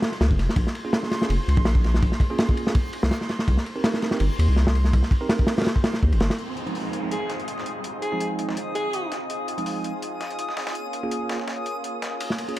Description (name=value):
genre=drum and bass, jungle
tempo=165 BPM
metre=4/4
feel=swing 55% on 16ths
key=F minor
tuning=A4 = 443 Hz
part: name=crunchy breakbeat drum kit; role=drums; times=0.0-6.4, 12.2-12.6 s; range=kick drum, ride cymbal, snare drum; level=-22 LUFS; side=equal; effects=none
part: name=backwards swelling texture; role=texture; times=0.0-12.6 s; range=C6 to Eb6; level=-35 LUFS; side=left 1 dB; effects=built-in reverb
part: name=saturated sub bass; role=bass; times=0.2-6.3 s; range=F1 to Eb2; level=-20 LUFS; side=equal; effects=none
part: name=bell-like tine electric piano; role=stabs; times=0.8-12.6 s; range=F3 to Bb4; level=-32 LUFS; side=right 3 dB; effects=vintage 12-bit sampler grit, low-pass filter, dub echo
part: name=lush unison pad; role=sustained chords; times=6.4-12.6 s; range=Bb3 to Ab4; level=-32 LUFS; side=equal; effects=chorus
part: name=dusty soul sampler-style drum kit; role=drums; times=6.4-12.6 s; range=hi-hat, snare drum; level=-35 LUFS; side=left 1 dB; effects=high-pass filter on hats, high-pass filter on snare
part: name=downlifter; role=sound effects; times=6.4-9.3 s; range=none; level=-36 LUFS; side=equal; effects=none
part: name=bright alto saxophone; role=melody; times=7.1-9.1 s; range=Ab4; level=-31 LUFS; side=equal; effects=dub echo
room=light reverb, studio reverb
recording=none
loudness=-22 LUFS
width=side -15 dB against mid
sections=0.0-6.4 A section; 6.4-12.6 B section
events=filter sweep on tine electric piano 6.4-12.6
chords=0.0 Bbm7; 2.8 Cm7; 6.4 Fm7; 10.8 Bbm7